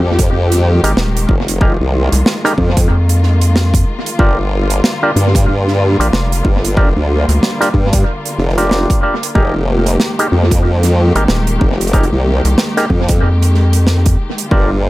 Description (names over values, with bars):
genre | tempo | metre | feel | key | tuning
glitch hop | 93 BPM | 4/4 | swing 60% on 16ths | F dorian | A4 = 440 Hz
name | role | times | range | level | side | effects
rich symphonic string section | sustained chords | 0.0-14.9 s | D3 to G4 | -21 LUFS | left 1 dB | vintage 12-bit sampler grit, sidechain pumping
formant-sweep wobble bass | bass | 0.0-14.9 s | F1 to G2 | -13 LUFS | equal | chorus
sub drop | sound effects | 0.0-1.6 s | none | barely audible | none | none
electronic kick drum | drums | 0.2-14.7 s | none | -14 LUFS | equal | none
modern studio drum kit | drums | 0.2-14.5 s | hi-hat, snare drum | -18 LUFS | right 2 dB | analog delay
auto-wah clav | stabs | 0.8-14.7 s | D4 to Bb4 | -18 LUFS | equal | sidechain pumping, analog delay
rubbery square bass | bass | 0.8-14.2 s | Eb1 to F2 | -12 LUFS | equal | none
room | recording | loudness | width
little or no reverb | echo-heavy mix | -11 LUFS | side -18 dB against mid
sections
0.0-14.9 A section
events
impact 0.0-1.6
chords
0.0 Fm11; 4.2 Gm7; 9.4 Fm11